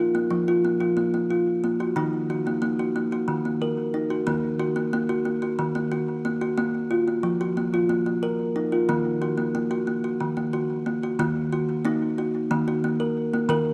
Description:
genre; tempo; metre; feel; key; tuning
world meditative, meditative tuned percussion; 182 BPM (eighths); 7/8; straight; Eb minor; A4 = 440 Hz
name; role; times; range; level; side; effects
kalimba; solo; 0.0-13.7 s; Eb3 to Bb4; -25 LUFS; equal; tape echo
room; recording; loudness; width
wet echo chamber reverb, RT60 1.8 s, small room ambience; dark, warm production; -25 LUFS; mono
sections
0.0-11.2 A section; 11.2-13.7 B section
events
none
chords
0.0 Bb5; 2.0 Ebm; 6.6 Bb5; 8.9 Ebm

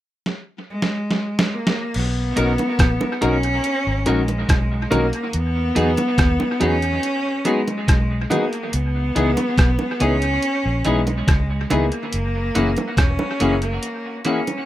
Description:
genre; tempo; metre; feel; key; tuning
lovers rock reggae; 71 BPM; 4/4; straight; B major; A4 = 439 Hz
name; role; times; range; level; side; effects
detuned 8-bit digital drum machine; drums; 0.3-14.7 s; crash cymbal, hi-hat, kick drum, rim click, snare drum; -21 LUFS; equal; dub echo
rich cello; melody; 0.7-14.7 s; G#3 to C#4; -23 LUFS; equal; tape echo
vintage muted fingered electric bass; bass; 2.0-13.8 s; E1 to E2; -22 LUFS; equal; none
warm baby grand piano; accompaniment; 2.4-14.4 s; A#3 to A#4; -21 LUFS; left 2 dB; none
clean electric guitar; stabs; 2.4-14.4 s; E3 to A#4; -28 LUFS; right 3 dB; lush chorus, dub echo
bongos; percussion; 2.6-14.7 s; none; -29 LUFS; right 3 dB; dub echo
room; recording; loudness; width
light reverb; rough home demo mix; -18 LUFS; side -14 dB against mid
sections
0.0-1.9 A section; 1.9-14.7 B section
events
drum fill 0.2-1.9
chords
0.0 N.C.; 1.9 Bmaj7; 5.3 Emaj9; 8.7 C#m7; 12.1 F#7

